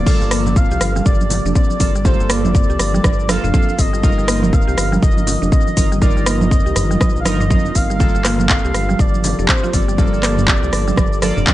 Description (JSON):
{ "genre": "afro house", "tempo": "121 BPM", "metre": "4/4", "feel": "swing 60% on 16ths", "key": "G minor", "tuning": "A4 = 439 Hz", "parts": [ { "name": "expressive synth lead", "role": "melody", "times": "0.0-11.5 s", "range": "C5 to F5", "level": "-23 LUFS", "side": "equal", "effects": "lush chorus, analog delay" }, { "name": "ethereal airy pad", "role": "sustained chords", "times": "0.0-11.5 s", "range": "Eb3 to A4", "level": "-27 LUFS", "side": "left 2 dB", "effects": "ensemble chorus, built-in reverb, sidechain pumping" }, { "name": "mallet-like synth pluck", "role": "arpeggios", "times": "0.0-11.5 s", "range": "F3 to G4", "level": "-24 LUFS", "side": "equal", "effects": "chorus, sidechain pumping, analog delay" }, { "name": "round analog bass", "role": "bass", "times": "0.0-11.5 s", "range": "F1 to C2", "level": "-20 LUFS", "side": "equal", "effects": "sidechain pumping" }, { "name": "warm analog keys", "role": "stabs", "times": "0.1-11.5 s", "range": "Bb3 to Bb4", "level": "-27 LUFS", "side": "right 3 dB", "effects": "chorus, sidechain pumping, tape echo" }, { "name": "afro-pop drum kit", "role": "drums", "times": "0.1-11.5 s", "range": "crash cymbal, handclaps, hi-hat, rim click, shaker, toms", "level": "-21 LUFS", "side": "equal", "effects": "studio reverb" }, { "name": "electronic kick drum", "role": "drums", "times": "0.1-11.5 s", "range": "none", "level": "-15 LUFS", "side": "equal", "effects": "studio reverb" }, { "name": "congas", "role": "percussion", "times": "0.1-11.5 s", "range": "none", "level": "-24 LUFS", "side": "right 4 dB", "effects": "tape echo" } ], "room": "digital ambience", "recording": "echo-heavy mix, nothing above 10.4 kHz", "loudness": "-13 LUFS", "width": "side -15 dB against mid", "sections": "0.0-11.5 A section", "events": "none", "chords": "0.1 Gm9; 4.0 Ebsus2; 8.0 Gm9" }